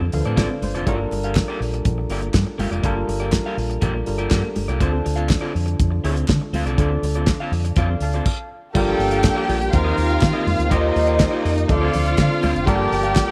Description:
disco; 122 BPM; 4/4; straight; G minor; A4 = 436 Hz
barky tine electric piano; accompaniment; 0.0-13.3 s; D3 to A5; -29 LUFS; equal; lush chorus
electric guitar through a small old amp; accompaniment; 0.0-13.3 s; Bb3 to F5; -31 LUFS; equal
deep dub fingered electric bass; bass; 0.0-13.2 s; F1 to Eb3; -25 LUFS; equal
damped 70s drum kit; drums; 0.1-13.3 s; crash cymbal, hi-hat, kick drum, snare drum; -24 LUFS; equal
congas; percussion; 0.1-13.3 s; -32 LUFS; equal
group handclap; percussion; 1.4-13.3 s; -38 LUFS; equal
mellow horn section; stabs; 8.7-13.3 s; D4 to D5; -29 LUFS; equal
rich symphonic string section; second line; 8.8-13.3 s; Eb4 to G5; -25 LUFS; equal
mellow tonewheel organ; sustained chords; 8.8-13.3 s; D3 to G4; -28 LUFS; equal; overdrive, chorus vibrato, slow rotary speaker
light reverb, small room ambience; -20 LUFS; mono
0.0-8.7 A section; 8.7-13.3 B section
tine electric piano fill 0.0-0.9; stop 8.3-8.7
0.0 Dm7; 0.9 Gm7; 4.8 Dm7; 8.7 Gm9; 9.7 Eb6; 10.7 Cm11/Eb; 11.7 Dm7; 12.7 Gm9

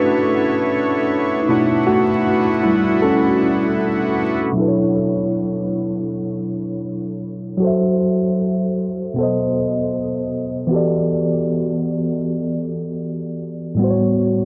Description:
hip hop; 78 BPM; 4/4; swing 64% on 16ths; B minor; A4 = 440 Hz
tine electric piano; accompaniment; 0.0-14.4 s; A2 to E5; -20 LUFS; equal; low-pass filter
accordion; sustained chords; 0.0-4.5 s; D3 to C#5; -26 LUFS; equal; low-pass filter
wet huge ambient reverb, RT60 6.9 s; dreamy mix soaked in reverb, vinyl crackle, low-pass filter; -19 LUFS; mono
0.0-4.6 A section; 4.6-14.4 B section
tine electric piano solo 0.0-4.6; filter sweep 4.6-14.4
0.0 Bm11; 7.6 F#m7b5; 9.2 B7b9; 10.7 Em11; 13.8 A13

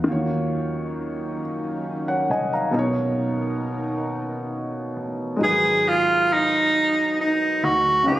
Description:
R&B; 45 BPM (dotted quarters); 6/8; straight; G# dorian; A4 = 441 Hz
warm baby grand piano; accompaniment; 0.0-8.2 s; B2 to A#5; -25 LUFS; equal
chorused pulse-width pad; sustained chords; 0.0-5.4 s; F#3 to A#4; -33 LUFS; right 2 dB
vintage muted fingered electric bass; bass; 0.0-8.2 s; G#1 to F#2; -32 LUFS; right 1 dB
breathy tenor saxophone; melody; 5.4-8.2 s; D#4 to G#4; -18 LUFS; right 1 dB; tape echo
light reverb, studio reverb; recorded on a phone in the room, club reverb; -20 LUFS; side -14 dB against mid
0.0-5.4 A section; 5.4-8.2 B section
0.1 D#m7; 2.7 Bmaj9; 5.4 G#m9

